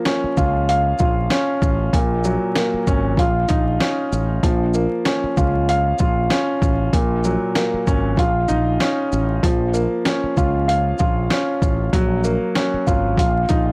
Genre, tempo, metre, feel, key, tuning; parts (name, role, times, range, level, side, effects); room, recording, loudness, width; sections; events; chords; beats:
hip hop, boom-bap hip-hop; 96 BPM; 4/4; swing 56% on 16ths; Bb harmonic minor; A4 = 440 Hz
warm upright piano; accompaniment; 0.0-13.7 s; Bb2 to F5; -22 LUFS; equal; high-pass filter, low-pass filter
dusty soul sampler-style drum kit; drums; 0.1-13.7 s; hi-hat, kick drum, shaker, snare drum; -23 LUFS; equal
fretless electric bass; bass; 0.2-13.7 s; Ab1 to Db2; -23 LUFS; equal
digital ambience; dry, gritty hardware recording, vinyl crackle; -19 LUFS; mono
0.0-13.7 A section
0.0 Bbm; 1.9 Gb/Bb; 3.2 Ebsus2/Bb; 4.4 Bbm; 6.9 Gb/Bb; 8.2 Ebsus2/Bb; 9.4 Bbm; 11.9 Gbmaj7/Bb; 13.2 Ebsus2/Bb
0.06 0.68 1.31 | 1.93 2.56 3.18 3.81 | 4.43 5.06 5.68 6.31 | 6.93 7.56 8.18 8.81 | 9.43 10.06 10.68 11.31 | 11.93 12.56 13.18